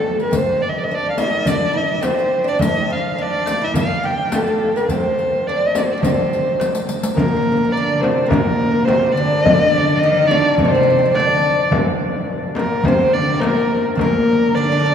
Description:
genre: Arabic maqam ensemble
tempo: 106 BPM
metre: 4/4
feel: straight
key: C maqam rast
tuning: A4 = 440 Hz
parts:
  - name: dark violin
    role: melody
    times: 0.0-14.9 s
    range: A4 to G5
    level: -18 LUFS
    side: left 1 dB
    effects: none
  - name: oud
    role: second line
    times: 0.0-14.9 s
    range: A3 to G4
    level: -23 LUFS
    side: equal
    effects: none
  - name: darbuka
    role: percussion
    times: 0.2-14.6 s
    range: none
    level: -25 LUFS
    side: right 1 dB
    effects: none
  - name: riq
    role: percussion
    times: 0.2-7.2 s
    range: none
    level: -31 LUFS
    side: left 2 dB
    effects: none
  - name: frame drum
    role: percussion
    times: 0.3-14.1 s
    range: none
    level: -22 LUFS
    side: left 1 dB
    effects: none
  - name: warm studio cello section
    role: second line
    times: 7.2-14.9 s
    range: Bb2 to Eb3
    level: -21 LUFS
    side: equal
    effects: none
room: wet cathedral reverb, RT60 5.4 s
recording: recorded in a church or concert hall, small room ambience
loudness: -15 LUFS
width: side -8 dB against mid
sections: 0.0-7.2 A section; 7.2-14.9 B section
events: drum fill 6.6-7.2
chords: none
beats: | 0.33 0.90 1.47 2.04 | 2.61 3.18 3.75 4.32 | 4.89 5.46 6.03 6.60 | 7.17 7.74 8.31 8.88 | 9.44 10.01 10.58 11.15 | 11.71 12.28 12.85 13.41 | 13.98 14.55

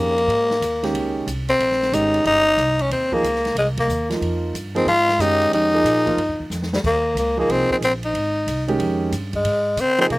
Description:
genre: modal jazz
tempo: 183 BPM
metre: 4/4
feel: swing 64% on 8ths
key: Bb dorian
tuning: A4 = 438 Hz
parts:
  - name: growling tenor saxophone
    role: melody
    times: 0.0-10.2 s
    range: G3 to F4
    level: -18 LUFS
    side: left 1 dB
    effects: none
  - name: warm grand piano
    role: accompaniment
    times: 0.0-10.1 s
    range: Eb3 to Ab4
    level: -23 LUFS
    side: right 3 dB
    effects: none
  - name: upright bass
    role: bass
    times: 0.0-10.2 s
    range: G1 to Db3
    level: -27 LUFS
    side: equal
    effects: none
  - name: open jazz drum kit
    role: drums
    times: 0.2-10.2 s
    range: crash cymbal, hi-hat, kick drum, ride cymbal, snare drum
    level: -33 LUFS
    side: equal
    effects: none
room: little or no reverb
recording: recorded outdoors, with no room sound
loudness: -17 LUFS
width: side -20 dB against mid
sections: 0.0-10.2 A section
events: band accent 3.7; drum fill 6.5-6.8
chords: 0.0 Eb13sus4; 1.6 Bb13sus4; 6.8 Eb13sus4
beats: | 0.29 0.61 0.94 1.27 | 1.60 1.93 2.25 2.58 | 2.91 3.24 3.56 3.89 | 4.22 4.55 4.87 5.20 | 5.53 5.86 6.18 6.51 | 6.84 7.16 7.49 7.82 | 8.14 8.47 8.80 9.12 | 9.45 9.78 10.11

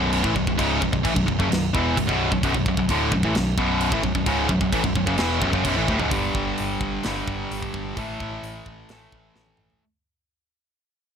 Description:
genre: heavy metal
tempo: 130 BPM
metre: 4/4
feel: straight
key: B minor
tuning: A4 = 439 Hz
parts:
  - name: high-gain distorted guitar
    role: riff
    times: 0.0-9.8 s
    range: B1 to A3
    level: -22 LUFS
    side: equal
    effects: distortion
  - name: overdriven picked electric bass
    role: bass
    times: 0.0-9.7 s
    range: B0 to A1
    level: -28 LUFS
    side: equal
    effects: none
  - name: tight metal drum kit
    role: drums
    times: 0.1-9.8 s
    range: crash cymbal, hi-hat, kick drum, snare drum, toms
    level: -27 LUFS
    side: right 1 dB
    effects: none
room: light reverb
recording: none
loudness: -20 LUFS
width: side -7 dB against mid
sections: 0.0-6.1 A section; 6.1-9.8 B section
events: drum fill 5.9, 9.4-9.8; fade-out 6.1-9.8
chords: 0.0 Bm; 6.1 G5; 8.0 A5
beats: 0.13 | 0.59 1.05 1.51 1.97 | 2.43 2.89 3.35 3.81 | 4.27 4.74 5.20 5.66 | 6.12 6.58 7.04 7.50 | 7.97 8.43 8.89 9.36

